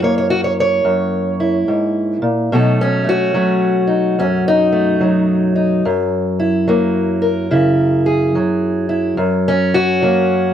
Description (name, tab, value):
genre	acoustic country blues, solo or duo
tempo	72 BPM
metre	4/4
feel	swing 64% on 8ths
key	F# mixolydian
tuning	A4 = 440 Hz
part	fingerpicked steel-string acoustic guitar	solo	0.0-10.5 s	F#2 to C#5	-13 LUFS	equal	none
room	light reverb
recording	none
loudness	-13 LUFS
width	side -9 dB against mid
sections	0.0-10.5 A section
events	none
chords	0.0 F#7; 2.5 B7; 5.9 F#7